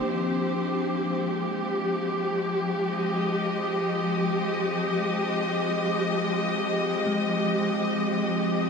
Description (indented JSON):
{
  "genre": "ambient",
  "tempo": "free time",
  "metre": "none",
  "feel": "none",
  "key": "F minor",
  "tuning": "A4 = 440 Hz",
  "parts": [
    { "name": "rich symphonic string section", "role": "sustained chords", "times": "0.0-8.7 s", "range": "F3 to Eb5", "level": "-25 LUFS", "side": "left 1 dB", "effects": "shimmer reverb" },
    { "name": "bell-like tine electric piano", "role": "arpeggios", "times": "0.0-0.1, 7.1-8.7 s", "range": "Ab3", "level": "-32 LUFS", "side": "equal", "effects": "phaser, ping-pong delay, shimmer reverb" },
    { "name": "bowed-like drone", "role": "drone", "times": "0.0-8.7 s", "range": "F3 to C4", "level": "-37 LUFS", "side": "left 1 dB", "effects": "built-in reverb" }
  ],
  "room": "wet huge ambient reverb, RT60 7.2 s",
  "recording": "dreamy mix soaked in reverb",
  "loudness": "-24 LUFS",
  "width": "side -5 dB against mid",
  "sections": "0.1-8.7 A section",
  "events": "fade-in on synth drone 0.1-8.7",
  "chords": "0.1 Fm9"
}